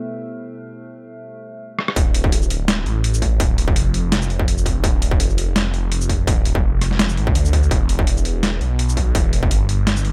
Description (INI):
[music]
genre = half-time drum and bass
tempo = 167 BPM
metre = 4/4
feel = swing 54% on 16ths, half-time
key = D dorian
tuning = A4 = 440 Hz
[part]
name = dark analog pad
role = sustained chords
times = 0.0-1.9 s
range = B3 to E5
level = -38 LUFS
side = equal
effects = chorus, sidechain pumping
[part]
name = metallic inharmonic drone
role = texture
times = 0.0-1.2 s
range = A3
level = -39 LUFS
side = equal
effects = chorus, built-in reverb
[part]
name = boom bap sampler-style drum kit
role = drums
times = 1.8-10.1 s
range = hi-hat, rim click, shaker, snare drum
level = -25 LUFS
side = equal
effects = overdrive, low-pass filter on snare, low-pass filter on hats, low-pass filter on perc
[part]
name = phased detuned saw bass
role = bass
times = 2.0-10.1 s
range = D1 to D2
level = -22 LUFS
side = equal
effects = phaser, tube saturation
[part]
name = electronic kick drum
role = drums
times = 2.0-9.5 s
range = none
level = -21 LUFS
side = equal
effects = distortion
[sound]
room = little or no reverb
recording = none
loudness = -18 LUFS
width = mono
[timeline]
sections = 0.0-2.0 A section; 2.0-10.1 B section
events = drum fill 1.8; drop 2.0-10.1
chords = 0.0 Em; 2.0 Dm; 7.7 Em